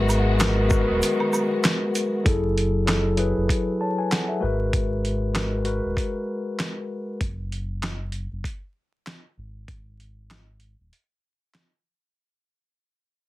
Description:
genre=hip hop, boom-bap hip-hop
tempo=97 BPM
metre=4/4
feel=swing 58% on 16ths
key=unclear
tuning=A4 = 440 Hz
part: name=mellow tine electric piano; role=accompaniment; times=0.0-7.2 s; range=F#3 to A5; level=-24 LUFS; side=left 1 dB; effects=slow stereo tremolo, cassette tape, high-pass filter, low-pass filter, plate reverb
part: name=warm studio string section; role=sustained chords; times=0.0-2.2 s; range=D#3 to F#4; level=-29 LUFS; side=equal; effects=high-pass filter, low-pass filter
part: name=sub bass with octave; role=bass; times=0.0-10.9 s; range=D#1 to G#1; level=-26 LUFS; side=equal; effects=none
part: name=dusty soul sampler-style drum kit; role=drums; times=0.1-11.7 s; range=handclaps, hi-hat, kick drum, shaker, snare drum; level=-25 LUFS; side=equal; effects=none
part: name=tube shaker and woodblock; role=percussion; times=0.1-2.1 s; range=none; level=-33 LUFS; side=right 4 dB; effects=none
room=moderate small room reverb, RT60 0.5 s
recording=heavily compressed radio sound, vinyl crackle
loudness=-22 LUFS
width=side -17 dB against mid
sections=0.0-2.3 A section; 2.3-12.2 B section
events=break 1.0-2.3, 7.2-12.2; fade-out 2.3-12.2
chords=0.0 G#m9; 2.3 F#m9; 4.4 G#m9; 7.2 N.C.; 9.4 G#5

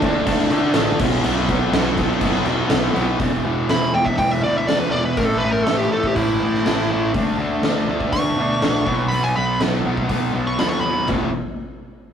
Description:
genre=garage rock duo or trio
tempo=122 BPM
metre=4/4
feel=straight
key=unclear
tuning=A4 = 442 Hz
part: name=fuzz guitar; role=riff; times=0.0-11.3 s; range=E2 to D4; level=-21 LUFS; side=equal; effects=distortion
part: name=fuzz picked electric bass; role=bass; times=0.0-11.3 s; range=E1 to D3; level=-26 LUFS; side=equal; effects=overdrive
part: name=oversized low-tuned drum kit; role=drums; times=0.0-11.2 s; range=crash cymbal, hi-hat, kick drum, snare drum, toms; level=-22 LUFS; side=equal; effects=none
part: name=fuzz lead guitar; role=melody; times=3.7-11.1 s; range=E4 to C#6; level=-21 LUFS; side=right 1 dB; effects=distortion
room=moderate small room reverb, RT60 0.5 s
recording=rough rehearsal-room recording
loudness=-17 LUFS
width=side -8 dB against mid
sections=0.0-3.2 A section; 3.2-11.1 B section; 11.1-12.1 C section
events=lead electric guitar solo 3.2-11.1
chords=0.0 D5; 1.0 B5; 3.2 E5; 5.2 A5; 7.1 D5; 8.9 B; 11.1 E5

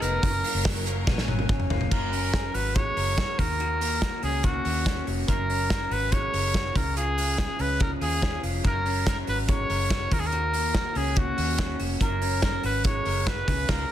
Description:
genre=jangly indie pop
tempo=143 BPM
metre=4/4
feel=straight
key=F# major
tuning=A4 = 439 Hz
part: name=warm trumpet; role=melody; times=0.0-13.9 s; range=F#4 to C#5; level=-29 LUFS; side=equal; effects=tape echo
part: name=bright studio string section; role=sustained chords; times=0.0-1.9 s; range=F#3 to B4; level=-37 LUFS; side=equal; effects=none
part: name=electric guitar through a small old amp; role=arpeggios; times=0.0-13.9 s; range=F#2 to A#4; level=-32 LUFS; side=left 1 dB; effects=none
part: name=vintage muted fingered electric bass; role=bass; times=0.0-13.8 s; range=E#1 to D#2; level=-30 LUFS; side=equal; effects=none
part: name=loose indie drum kit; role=drums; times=0.0-13.8 s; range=crash cymbal, hi-hat, kick drum, snare drum, toms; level=-27 LUFS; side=equal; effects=none
room=light reverb, studio ambience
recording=dense, heavily limited modern master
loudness=-23 LUFS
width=side -11 dB against mid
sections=0.0-1.9 A section; 1.9-13.9 B section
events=drum fill 1.1-1.9; band accent 13.7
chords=0.2 F#; 1.9 F#add9; 3.4 D#m7; 5.3 F#add9; 6.8 C#; 8.6 F#add9; 10.1 D#m7; 12.0 F#add9

